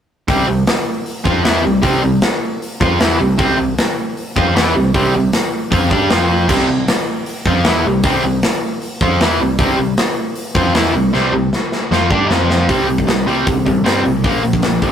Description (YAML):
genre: punk rock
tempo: 155 BPM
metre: 4/4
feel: straight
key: C major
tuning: A4 = 439 Hz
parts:
  - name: distorted electric guitar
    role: riff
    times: 0.3-14.9 s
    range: F2 to G4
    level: -14 LUFS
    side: equal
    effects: distortion
  - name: overdriven picked electric bass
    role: bass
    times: 0.3-14.9 s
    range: A1 to G2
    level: -22 LUFS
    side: equal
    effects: none
  - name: big rock drum kit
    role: drums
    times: 0.3-14.9 s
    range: crash cymbal, hi-hat, kick drum, snare drum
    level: -17 LUFS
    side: equal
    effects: none
room: light reverb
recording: rough rehearsal-room recording, tube saturation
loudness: -13 LUFS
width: side -8 dB against mid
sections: 0.3-12.7 A section; 12.7-14.9 B section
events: drum fill 11.1-12.7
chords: 0.3 C; 6.1 F5; 6.5 C; 12.3 F5; 12.7 C5; 14.2 Bb5